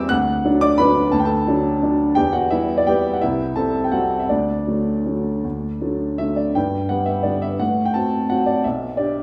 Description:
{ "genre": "classical, piano waltz", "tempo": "154-184 BPM", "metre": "3/4", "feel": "rubato", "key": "G major", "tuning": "A4 = 440 Hz", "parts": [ { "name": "warm upright piano", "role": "solo", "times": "0.0-9.2 s", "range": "B1 to F#6", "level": "-20 LUFS", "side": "equal", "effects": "none" } ], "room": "wet large studio reverb, RT60 1.2 s", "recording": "heard from further back in the room", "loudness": "-20 LUFS", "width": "mono", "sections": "0.0-6.6 A section; 6.6-9.2 B section", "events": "none", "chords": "0.1 D; 2.2 Em; 3.2 C; 4.3 D; 6.6 G; 7.6 F#dim/A; 8.6 G/B", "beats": "| 0.10 0.43 0.78 | 1.12 1.47 1.82 | 2.17 2.52 2.87 | 3.21 3.56 3.92 | 4.29 4.67 5.06 | 5.44 5.81 6.18 | 6.55 6.90 7.25 | 7.59 7.94 8.30 | 8.64 8.97" }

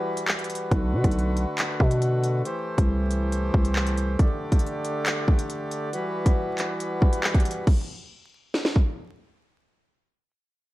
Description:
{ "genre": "hip hop, drill", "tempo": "138 BPM", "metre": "4/4", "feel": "half-time", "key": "unclear", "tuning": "A4 = 445 Hz", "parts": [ { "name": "hand-pumped harmonium", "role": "sustained chords", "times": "0.0-7.7 s", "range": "D3 to D5", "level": "-29 LUFS", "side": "equal", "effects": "none" }, { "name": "drill drum kit", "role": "drums", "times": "0.2-8.9 s", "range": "crash cymbal, handclaps, hi-hat, kick drum, snare drum", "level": "-22 LUFS", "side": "equal", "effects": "vintage 12-bit sampler grit" }, { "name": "growling 808-style bass", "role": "bass", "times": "0.7-4.2 s", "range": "B1 to B2", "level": "-23 LUFS", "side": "equal", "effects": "none" } ], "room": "little or no reverb", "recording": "vinyl crackle", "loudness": "-22 LUFS", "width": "side -17 dB against mid", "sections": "0.0-7.7 A section; 7.7-10.7 B section", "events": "break 0.0-0.7", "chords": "0.0 Emadd9; 0.7 Bm7; 2.5 C6; 4.2 Gsus2; 5.9 Emadd9; 7.7 N.C.", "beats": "0.28 | 0.71 1.15 1.58 2.02 | 2.45 2.89 3.32 3.76 | 4.19 4.63 5.06 5.50 | 5.93 6.37 6.80 7.24 | 7.67 8.11 8.54" }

